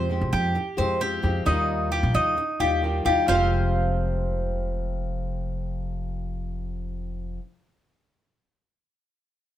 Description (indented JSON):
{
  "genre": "latin",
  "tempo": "132 BPM",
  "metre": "4/4",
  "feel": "straight",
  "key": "F minor",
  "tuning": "A4 = 440 Hz",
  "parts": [
    { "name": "nylon-string guitar", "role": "accompaniment", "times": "0.0-7.4 s", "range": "F2 to G4", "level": "-28 LUFS", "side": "left 4 dB", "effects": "none" },
    { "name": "Cuban tres", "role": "arpeggios", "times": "0.0-7.4 s", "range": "Eb4 to F5", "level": "-26 LUFS", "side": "right 3 dB", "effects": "none" },
    { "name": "upright bass", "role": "bass", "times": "0.0-7.4 s", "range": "F1 to F2", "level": "-27 LUFS", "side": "equal", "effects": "none" }
  ],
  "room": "light reverb",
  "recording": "none",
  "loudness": "-23 LUFS",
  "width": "side -12 dB against mid",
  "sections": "0.0-3.3 A section; 3.3-6.9 B section",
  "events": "none",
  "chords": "0.0 Fmadd9; 1.5 Ebadd9; 3.3 Fmadd9"
}